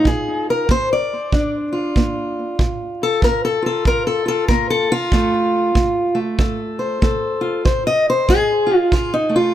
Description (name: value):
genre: acoustic country blues, solo or duo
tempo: 95 BPM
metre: 4/4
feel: swing 60% on 8ths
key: F mixolydian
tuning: A4 = 441 Hz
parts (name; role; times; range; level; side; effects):
- fingerpicked steel-string acoustic guitar; melody; 0.0-9.5 s; F2 to Eb5; -17 LUFS; left 1 dB; tape echo
- kick drum; drums; 0.1-9.1 s; none; -19 LUFS; right 1 dB; none
room: light reverb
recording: none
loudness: -16 LUFS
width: side -11 dB against mid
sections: 0.0-9.5 A section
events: steel-string acoustic guitar solo 0.0-9.5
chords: 0.1 Bb; 5.1 F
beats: | 0.05 0.68 1.32 1.95 | 2.59 3.22 3.85 4.49 | 5.12 5.76 6.39 7.02 | 7.66 8.29 8.92